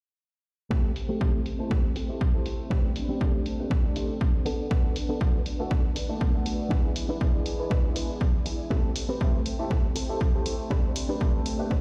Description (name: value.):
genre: filtered disco house.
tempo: 120 BPM.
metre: 4/4.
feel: swing 54% on 16ths.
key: A minor.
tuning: A4 = 440 Hz.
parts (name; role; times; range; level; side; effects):
bright baby grand piano; accompaniment; 0.7-11.7 s; G#3 to B5; -37 LUFS; equal; phaser, sidechain pumping, low-pass filter.
string machine, full ensemble; sustained chords; 0.7-11.8 s; C4 to A5; -40 LUFS; equal; ensemble chorus, sidechain pumping, low-pass filter.
direct-recorded clean electric guitar; riff; 0.7-11.8 s; A3 to C5; -36 LUFS; equal; vintage 12-bit sampler grit, sidechain pumping, low-pass filter.
electronic kick drum; drums; 0.7-11.8 s; none; -27 LUFS; equal; none.
electronic hi-hat; drums; 1.0-11.6 s; none; -41 LUFS; equal; sidechain pumping on hats, low-pass filter on hats, low-pass filter on room.
room: light reverb.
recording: played on a big sound system in a bare room, stone room reverb.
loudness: -27 LUFS.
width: mono.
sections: 0.7-11.8 A section.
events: filter sweep 0.7-11.8.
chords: 0.7 Am7; 2.7 D7sus4; 4.5 Bm7; 6.7 E7; 8.7 Am7; 10.7 D7sus4.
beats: | 0.71 1.21 1.71 2.21 | 2.71 3.21 3.71 4.21 | 4.71 5.21 5.71 6.21 | 6.71 7.21 7.71 8.21 | 8.71 9.21 9.71 10.21 | 10.71 11.21 11.71.